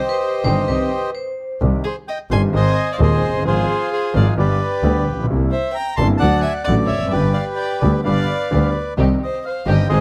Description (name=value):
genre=tango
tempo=130 BPM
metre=4/4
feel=rubato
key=C harmonic minor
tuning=A4 = 440 Hz
part: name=bandoneon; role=melody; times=0.0-10.0 s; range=F4 to C6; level=-24 LUFS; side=equal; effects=plate reverb
part: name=vibraphone with hard mallets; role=second line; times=0.0-1.6 s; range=G4 to C5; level=-29 LUFS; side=equal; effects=none
part: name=warm violin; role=second line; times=0.0-10.0 s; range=Ab4 to A5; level=-29 LUFS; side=equal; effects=none
part: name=warm concert grand piano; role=accompaniment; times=0.4-10.0 s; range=Eb1 to Ab4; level=-22 LUFS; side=equal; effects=none
part: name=clear double bass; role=bass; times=0.4-10.0 s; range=F1 to Eb2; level=-22 LUFS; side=equal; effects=none
part: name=muted studio string section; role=stabs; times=0.5-0.9, 9.0-10.0 s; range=C4 to Ab4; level=-32 LUFS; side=equal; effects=tape echo
room=light reverb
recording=dark, warm production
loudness=-18 LUFS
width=mono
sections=0.0-1.6 A section; 1.6-10.0 B section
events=none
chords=0.0 Cm; 2.5 Ab; 3.5 Fm/Ab; 4.4 G; 5.3 C7; 6.2 D; 7.1 G; 9.0 Cm